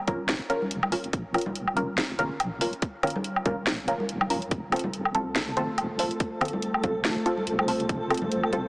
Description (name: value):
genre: deep dubstep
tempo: 142 BPM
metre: 4/4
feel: swing 56% on 16ths, half-time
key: Bb harmonic minor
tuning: A4 = 441 Hz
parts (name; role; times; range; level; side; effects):
- filtered dub chord stab; stabs; 0.1-8.6 s; C4 to Bb4; -29 LUFS; equal; phaser, analog chorus, dub echo
- deep soft wobble bass; bass; 0.1-8.7 s; Eb1 to C2; -36 LUFS; equal; chorus
- electronic kick drum; drums; 0.1-8.0 s; none; -28 LUFS; equal; overdrive
- garage drum kit; drums; 0.1-8.6 s; hi-hat, snare drum, woodblock; -28 LUFS; equal; none
- congas; percussion; 0.1-8.6 s; none; -36 LUFS; equal; dub echo
- dark analog pad; sustained chords; 5.5-8.7 s; A3 to C5; -32 LUFS; equal; chorus
- flickering grainy texture; texture; 5.0-8.7 s; A4; -35 LUFS; equal; built-in reverb
room: moderate huge ambient reverb, RT60 3.9 s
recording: heavily compressed radio sound, small speaker sound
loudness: -25 LUFS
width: side -24 dB against mid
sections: 0.0-8.7 A section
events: none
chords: 0.0 Bbm; 4.5 F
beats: 0.29 0.71 | 1.13 1.55 1.98 2.40 | 2.82 3.25 3.67 4.09 | 4.51 4.93 5.36 5.78 | 6.20 6.63 7.05 7.47 | 7.89 8.32